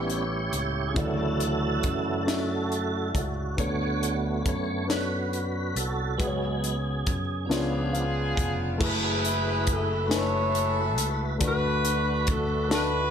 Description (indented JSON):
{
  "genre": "slow gospel",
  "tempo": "46 BPM (dotted quarters)",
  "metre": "6/8",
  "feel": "straight",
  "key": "F# minor",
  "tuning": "A4 = 440 Hz",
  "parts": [
    { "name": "dark grand piano", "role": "accompaniment", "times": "0.0-13.1 s", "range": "A2 to G#5", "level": "-33 LUFS", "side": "left 3 dB", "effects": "none" },
    { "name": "tonewheel organ", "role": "sustained chords", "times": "0.0-13.1 s", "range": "D3 to C#5", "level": "-31 LUFS", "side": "right 3 dB", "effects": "slow rotary speaker, overdrive, chorus vibrato" },
    { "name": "picked electric bass with an envelope filter", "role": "bass", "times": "0.0-13.1 s", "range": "E#1 to F#2", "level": "-30 LUFS", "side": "equal", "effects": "none" },
    { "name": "crisp fusion drum kit", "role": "drums", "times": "0.1-12.9 s", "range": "crash cymbal, hi-hat, kick drum, snare drum", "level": "-30 LUFS", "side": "left 1 dB", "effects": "none" },
    { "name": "warm saxophone section", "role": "melody", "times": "7.5-13.1 s", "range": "B3 to C#5", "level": "-28 LUFS", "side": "equal", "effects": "none" }
  ],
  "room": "moderate echo chamber reverb, RT60 2.1 s",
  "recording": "none",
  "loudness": "-24 LUFS",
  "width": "side -8 dB against mid",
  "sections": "0.0-8.8 A section; 8.8-13.1 B section",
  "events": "tonewheel organ solo 0.0-8.8; grand piano fill 7.5-8.8",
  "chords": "0.0 A9; 1.0 Dmaj9; 3.6 Bm9/D; 6.2 C#7sus4; 7.5 C#7b9; 8.8 F#m11; 11.4 D6",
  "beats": "| 0.96 2.27 | 3.58 4.89 | 6.19 7.50 | 8.80 10.11 | 11.41 12.71"
}